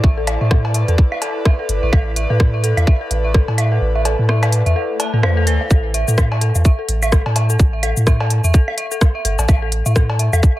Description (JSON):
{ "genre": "minimal techno", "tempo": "127 BPM", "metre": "4/4", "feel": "swing 59% on 16ths", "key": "unclear", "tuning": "A4 = 442 Hz", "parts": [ { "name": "dark detuned synth bell", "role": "riff", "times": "0.0-10.6 s", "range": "A4 to A5", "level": "-24 LUFS", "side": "equal", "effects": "chorus, phaser, sidechain pumping, dub echo" }, { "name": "punchy sub bass", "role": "bass", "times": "0.0-10.4 s", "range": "G1 to A2", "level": "-17 LUFS", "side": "equal", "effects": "sidechain pumping" }, { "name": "electronic kick drum", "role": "drums", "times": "0.0-10.5 s", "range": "none", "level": "-12 LUFS", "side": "equal", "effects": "none" }, { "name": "airy breathy pad", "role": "texture", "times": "0.0-5.7 s", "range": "E4 to D5", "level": "-26 LUFS", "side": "equal", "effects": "chorus, sidechain pumping" }, { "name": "techno drum kit", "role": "drums", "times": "0.3-10.5 s", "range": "hi-hat, rim click, shaker", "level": "-24 LUFS", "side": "left 1 dB", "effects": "overdrive" }, { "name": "cowbell and woodblock", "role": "percussion", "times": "0.3-10.4 s", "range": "none", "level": "-26 LUFS", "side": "equal", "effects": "tape echo" }, { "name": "swell", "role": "sound effects", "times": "4.9-5.7 s", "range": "none", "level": "-28 LUFS", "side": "left 7 dB", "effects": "none" } ], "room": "light reverb", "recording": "echo-heavy mix", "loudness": "-14 LUFS", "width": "side -16 dB against mid", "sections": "0.0-5.7 A section; 5.7-10.6 B section", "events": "kick drops out 3.8-5.7; swell 4.9-5.7; drop 5.7-10.6", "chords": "0.0 Am; 5.7 A5" }